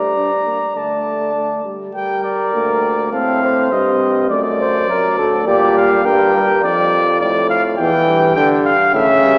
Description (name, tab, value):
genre	classical, imitative canzona for brass ensemble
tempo	103 BPM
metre	4/4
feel	straight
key	G minor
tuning	A4 = 439 Hz
part	warm trumpet	melody	0.0-9.4 s	D5 to Bb5	-17 LUFS	equal	none
part	mellow flugelhorn	second line	0.0-6.6 s	G4 to D5	-18 LUFS	equal	none
part	dark trombone	accompaniment	0.0-9.4 s	A2 to D4	-19 LUFS	equal	none
part	warm bass trombone	bass	0.0-9.4 s	D2 to D3	-20 LUFS	equal	none
room	wet church reverb, RT60 3.0 s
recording	heard from further back in the room, small speaker sound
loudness	-13 LUFS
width	side -36 dB against mid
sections	0.0-1.9 A section; 1.9-9.4 B section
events	none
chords	0.0 Dsus4/G; 0.8 D5; 1.9 Gm; 3.1 Adim; 4.3 D/F#; 5.5 Gm/Bb; 6.6 Dm/F; 7.8 Em7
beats	0.16 0.76 1.35 | 1.95 2.54 3.13 3.71 | 4.30 4.89 5.47 6.05 | 6.63 7.21 7.79 8.37 | 8.95